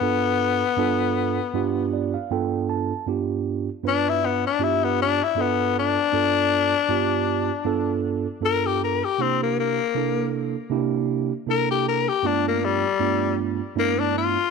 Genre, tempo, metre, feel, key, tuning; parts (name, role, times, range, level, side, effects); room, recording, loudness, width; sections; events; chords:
blues; 79 BPM; 4/4; swing 54% on 16ths; G mixolydian; A4 = 438 Hz
raspy tenor saxophone; melody; 0.0-14.5 s; G3 to Bb4; -22 LUFS; left 10 dB
mellow tine electric piano; accompaniment; 0.0-14.4 s; G2 to A5; -24 LUFS; right 8 dB
moderate echo chamber reverb, RT60 1.7 s, small room ambience; 1960s-style stereo with parts hard left and right; -20 LUFS; side -5 dB against mid
0.0-14.5 A section
tenor saxophone solo 0.0-14.5; tine electric piano fill 1.6-3.1
0.0 G7; 9.2 C7; 12.2 G7